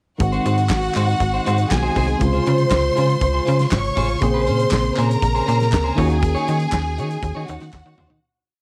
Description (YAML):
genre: disco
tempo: 120 BPM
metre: 4/4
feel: straight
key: unclear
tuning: A4 = 439 Hz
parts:
  - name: clear studio string section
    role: second line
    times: 0.2-8.2 s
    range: Gb4 to Db6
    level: -25 LUFS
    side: equal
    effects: none
  - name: clean electric guitar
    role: accompaniment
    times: 0.2-8.2 s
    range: Db4 to Db5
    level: -30 LUFS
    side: equal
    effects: none
  - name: tine electric piano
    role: accompaniment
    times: 0.2-8.3 s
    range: C3 to Ab4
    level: -26 LUFS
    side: equal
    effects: analog chorus
  - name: slap-like FM bass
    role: bass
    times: 0.2-8.2 s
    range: Ab1 to Eb3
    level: -23 LUFS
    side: equal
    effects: none
  - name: damped 70s drum kit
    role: drums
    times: 0.2-8.2 s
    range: handclaps, hi-hat, kick drum, snare drum, toms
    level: -26 LUFS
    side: equal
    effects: none
  - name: group handclap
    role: percussion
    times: 0.7-7.8 s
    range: none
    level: -34 LUFS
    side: equal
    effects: none
room: light reverb, small room ambience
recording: none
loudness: -19 LUFS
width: mono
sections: 0.2-8.2 pre-chorus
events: fade-out 6.2-8.2; drum fill 7.7-8.2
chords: 0.2 Ab7; 2.2 Dbmaj7; 4.2 Bbm9; 6.0 Ebm7